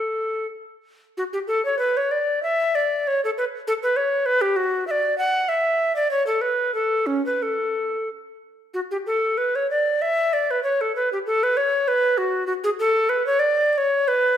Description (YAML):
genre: classical, baroque-style fantasia for unaccompanied recorder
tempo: 85-101 BPM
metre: 3/4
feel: rubato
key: D major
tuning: A4 = 441 Hz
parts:
  - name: tenor recorder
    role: solo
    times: 0.0-14.4 s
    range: C#4 to F#5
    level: -20 LUFS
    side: equal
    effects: none
room: moderate recital hall reverb, RT60 1.5 s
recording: minimal, uncompressed stereo recording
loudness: -20 LUFS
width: side -9 dB against mid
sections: 0.0-1.2 A section; 1.2-14.4 A section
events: none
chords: none